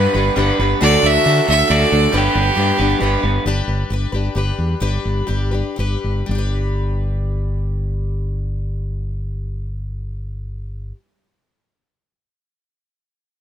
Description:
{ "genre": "folk rock and heartland rock", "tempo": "114-136 BPM", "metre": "3/4", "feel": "straight", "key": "G major", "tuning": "A4 = 441 Hz", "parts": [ { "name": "rich fiddle", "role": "melody", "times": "0.0-3.3 s", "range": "G4 to E5", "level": "-18 LUFS", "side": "right 2 dB", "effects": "none" }, { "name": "picked plugged-in twelve-string acoustic guitar", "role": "accompaniment", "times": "0.0-11.0 s", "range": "D3 to B4", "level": "-24 LUFS", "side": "left 4 dB", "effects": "none" }, { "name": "hand-pumped harmonium", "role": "sustained chords", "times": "0.0-3.4 s", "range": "F#3 to B4", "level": "-29 LUFS", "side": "left 1 dB", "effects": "none" }, { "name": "electric guitar through a small old amp", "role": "riff", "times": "0.0-3.4 s", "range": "D3 to B4", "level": "-19 LUFS", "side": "right 2 dB", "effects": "none" }, { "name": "fingered electric bass", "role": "bass", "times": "0.0-10.9 s", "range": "G1 to D3", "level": "-20 LUFS", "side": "equal", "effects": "none" } ], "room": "light reverb", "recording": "none", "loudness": "-16 LUFS", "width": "side -9 dB against mid", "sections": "0.0-3.5 A section; 3.5-6.3 B section; 6.3-9.4 C section", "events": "slowing down 3.5-6.3", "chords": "0.0 G; 0.8 D; 2.1 G" }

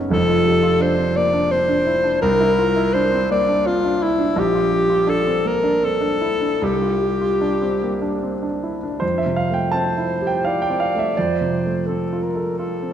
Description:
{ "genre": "classical, impressionist duo for alto saxophone and grand piano", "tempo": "73-89 BPM", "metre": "3/4", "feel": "rubato", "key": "F major", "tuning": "A4 = 440 Hz", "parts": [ { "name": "warm grand piano", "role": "accompaniment", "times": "0.0-12.9 s", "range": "F1 to A5", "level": "-20 LUFS", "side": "right 2 dB", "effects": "none" }, { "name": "warm alto saxophone", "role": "melody", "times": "0.1-12.9 s", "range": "E4 to D5", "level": "-20 LUFS", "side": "left 2 dB", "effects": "none" } ], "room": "wet scoring stage reverb, RT60 1.8 s", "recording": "none", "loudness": "-17 LUFS", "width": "side -9 dB against mid", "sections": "0.0-9.0 A section; 9.0-12.9 B section", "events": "none", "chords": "0.1 F6; 2.2 C9; 4.4 Bb69; 6.6 C9sus4; 9.0 Fmaj9; 11.2 Dm7/F" }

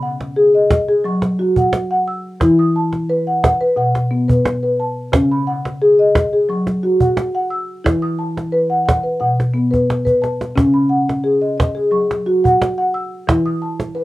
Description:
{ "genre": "world meditative, meditative tuned percussion", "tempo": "88 BPM", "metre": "4/4", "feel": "straight", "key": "C# minor", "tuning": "A4 = 440 Hz", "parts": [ { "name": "marimba with soft mallets", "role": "arpeggios", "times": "0.0-14.0 s", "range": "B2 to E6", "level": "-15 LUFS", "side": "left 1 dB", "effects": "cassette tape" }, { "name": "cajon", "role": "percussion", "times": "0.2-13.9 s", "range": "none", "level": "-17 LUFS", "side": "right 1 dB", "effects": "none" } ], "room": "wet booth ambience, RT60 0.3 s", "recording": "home recording on cassette", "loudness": "-14 LUFS", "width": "side -17 dB against mid", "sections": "0.0-14.0 A section", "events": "drum fill 10.1-10.6", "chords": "0.0 C#5; 1.0 F#5; 2.4 E5; 3.8 B5; 5.1 C#5; 6.5 F#5; 7.8 E5; 9.2 B5; 10.6 C#5; 11.9 F#5; 13.3 E5" }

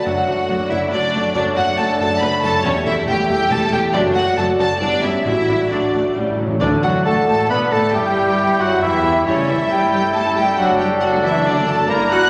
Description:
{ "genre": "classical, dramatic, fast romantic movement for symphony orchestra", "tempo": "137 BPM", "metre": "3/4", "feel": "straight", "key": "D major", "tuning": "A4 = 440 Hz", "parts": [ { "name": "clear symphonic violin section", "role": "melody", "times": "0.0-12.3 s", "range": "C#5 to F#6", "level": "-24 LUFS", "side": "equal", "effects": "none" }, { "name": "rich symphonic viola section", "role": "accompaniment", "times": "0.0-12.3 s", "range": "D3 to F#4", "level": "-30 LUFS", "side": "equal", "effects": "none" }, { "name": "dark French horn section", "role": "sustained chords", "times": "0.0-12.2 s", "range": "C#3 to G4", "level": "-25 LUFS", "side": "equal", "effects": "none" }, { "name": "concert harp", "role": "arpeggios", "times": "0.0-12.3 s", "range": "E2 to A5", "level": "-27 LUFS", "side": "equal", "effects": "none" }, { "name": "rich symphonic violin section", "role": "second line", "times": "0.1-12.3 s", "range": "C#4 to F#5", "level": "-27 LUFS", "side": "equal", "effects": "none" }, { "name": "rich symphonic cello section", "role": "bass", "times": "0.1-12.2 s", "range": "E2 to F#4", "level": "-31 LUFS", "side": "equal", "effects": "none" }, { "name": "warm studio double bass section", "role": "bass", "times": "0.1-12.3 s", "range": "E1 to B2", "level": "-30 LUFS", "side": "equal", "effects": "none" }, { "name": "timpani", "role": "percussion", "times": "5.2-7.2 s", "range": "A2 to D3", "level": "-28 LUFS", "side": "equal", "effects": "none" }, { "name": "clear oboe", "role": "second line", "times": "6.6-12.3 s", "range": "A4 to B5", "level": "-28 LUFS", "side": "equal", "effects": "none" }, { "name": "mellow hollow large flute ensemble", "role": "second line", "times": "6.6-12.3 s", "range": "C#5 to F#6", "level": "-27 LUFS", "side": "equal", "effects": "none" }, { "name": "warm clarinet", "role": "second line", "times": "6.6-12.3 s", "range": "D4 to B4", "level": "-23 LUFS", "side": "equal", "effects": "none" }, { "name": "mellow bassoon", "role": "accompaniment", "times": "7.1-12.3 s", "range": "D4 to G4", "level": "-24 LUFS", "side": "equal", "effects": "none" } ], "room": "wet scoring stage reverb, RT60 1.4 s", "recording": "none", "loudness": "-17 LUFS", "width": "mono", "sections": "0.0-6.6 A section; 6.6-12.3 B section", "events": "timpani fill 6.2-6.6", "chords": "0.1 D/F#; 2.6 A5/E; 3.9 D/F#; 4.8 Em/G; 5.3 D/A; 6.2 A; 6.6 D; 7.9 Em/G; 9.3 A7/G; 10.6 D/F#" }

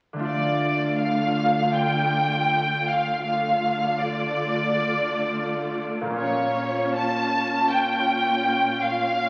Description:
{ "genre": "cinematic, emotional film score for orchestra", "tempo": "81 BPM", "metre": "4/4", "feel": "rubato", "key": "unclear", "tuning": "A4 = 442 Hz", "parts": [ { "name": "concert harp", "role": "arpeggios", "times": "0.1-9.3 s", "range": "Bb2 to F4", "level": "-32 LUFS", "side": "equal", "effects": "none" }, { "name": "warm symphonic viola section", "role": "accompaniment", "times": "0.2-9.3 s", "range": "A3 to F4", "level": "-31 LUFS", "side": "equal", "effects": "none" }, { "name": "rich symphonic violin section", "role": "melody", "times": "0.3-9.3 s", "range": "Db5 to A5", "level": "-25 LUFS", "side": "equal", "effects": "none" }, { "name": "rich symphonic cello section", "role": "bass", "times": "0.3-9.3 s", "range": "Bb2 to D3", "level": "-34 LUFS", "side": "equal", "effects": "none" } ], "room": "wet scoring stage reverb, RT60 1.9 s", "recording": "very old 78 rpm record, vinyl crackle", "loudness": "-24 LUFS", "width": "mono", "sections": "0.2-9.3 A section", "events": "none", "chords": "0.2 Dm; 6.2 Bbm" }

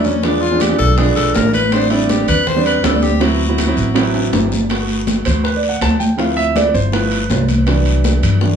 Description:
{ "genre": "Afro-Cuban jazz", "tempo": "161 BPM", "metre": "4/4", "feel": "straight", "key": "G major", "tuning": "A4 = 440 Hz", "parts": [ { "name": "breathy tenor saxophone", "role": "second line", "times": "0.0-4.3 s", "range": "C#4 to C5", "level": "-19 LUFS", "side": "left 5 dB", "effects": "none" }, { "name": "warm grand piano", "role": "accompaniment", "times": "0.0-8.6 s", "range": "E3 to A5", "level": "-17 LUFS", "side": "right 3 dB", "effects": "none" }, { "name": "upright bass", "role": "bass", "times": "0.0-8.6 s", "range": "G1 to G2", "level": "-18 LUFS", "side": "equal", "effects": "none" }, { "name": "guiro", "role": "percussion", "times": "0.0-8.6 s", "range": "none", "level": "-30 LUFS", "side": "left 5 dB", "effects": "none" }, { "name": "congas", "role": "percussion", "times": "0.1-8.6 s", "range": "none", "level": "-21 LUFS", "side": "left 1 dB", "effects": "none" }, { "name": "bongos", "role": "percussion", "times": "0.2-8.6 s", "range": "none", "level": "-26 LUFS", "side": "left 7 dB", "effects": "none" }, { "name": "timbales", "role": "percussion", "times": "0.2-8.4 s", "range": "none", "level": "-25 LUFS", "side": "right 5 dB", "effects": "none" } ], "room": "light reverb", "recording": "small room ambience", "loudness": "-13 LUFS", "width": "side -7 dB against mid", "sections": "0.0-4.7 A section; 4.7-8.6 A section", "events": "tenor saxophone solo 0.0-4.7; drum fill 4.1-4.7; grand piano solo 4.7-8.6", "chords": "0.2 E7b9; 1.7 Am11; 3.2 D13; 4.7 Gmaj9; 6.2 Dm7; 6.9 G13; 7.7 Cmaj9#11" }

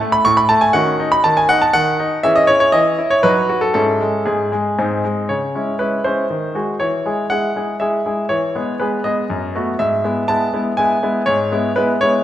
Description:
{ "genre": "classical-period piano sonatina", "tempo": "120 BPM", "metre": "3/4", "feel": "straight", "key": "C# minor", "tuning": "A4 = 439 Hz", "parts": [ { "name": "bright grand piano", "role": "solo", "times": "0.0-12.2 s", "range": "F#2 to C#6", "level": "-14 LUFS", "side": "equal", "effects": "none" } ], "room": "moderate concert hall reverb, RT60 2.0 s", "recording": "recorded in a church or concert hall", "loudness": "-14 LUFS", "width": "side -12 dB against mid", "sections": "0.0-5.3 A section; 5.3-12.2 B section", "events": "none", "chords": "0.0 A; 0.7 D#m7b5; 2.2 C#m/E; 3.2 B7/F#; 3.8 C#m/G#; 4.8 G#; 5.3 C#m; 6.3 G#7/D#; 6.8 C#m/E; 8.3 E; 9.3 B7/F#; 9.8 E/G#" }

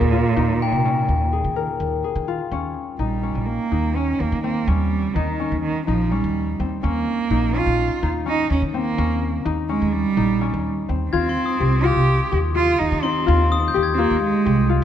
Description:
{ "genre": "contemporary instrumental, chamber music in an uneven meter", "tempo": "251 BPM (eighths)", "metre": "9/8", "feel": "straight", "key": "Eb mixolydian", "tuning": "A4 = 440 Hz", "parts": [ { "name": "warm cello", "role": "melody", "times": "0.0-14.8 s", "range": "Bb2 to G4", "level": "-22 LUFS", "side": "right 5 dB", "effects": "none" }, { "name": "concert harp", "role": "arpeggios", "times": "0.0-14.8 s", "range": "C4 to Bb4", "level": "-25 LUFS", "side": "left 8 dB", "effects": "none" }, { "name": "upright bass", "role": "bass", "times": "0.0-14.8 s", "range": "Bb1 to Eb3", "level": "-22 LUFS", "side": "equal", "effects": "none" }, { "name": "glockenspiel with hard plastic mallets", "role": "texture", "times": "0.6-2.0, 11.1-14.8 s", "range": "G5 to Ab6", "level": "-26 LUFS", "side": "left 5 dB", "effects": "none" } ], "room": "moderate concert hall reverb, RT60 2.4 s", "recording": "dark, warm production", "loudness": "-18 LUFS", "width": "side -10 dB against mid", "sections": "0.0-2.5 A section; 2.5-14.8 B section", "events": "none", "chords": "0.0 Eb7sus4; 2.5 Eb7; 11.1 Fmadd9" }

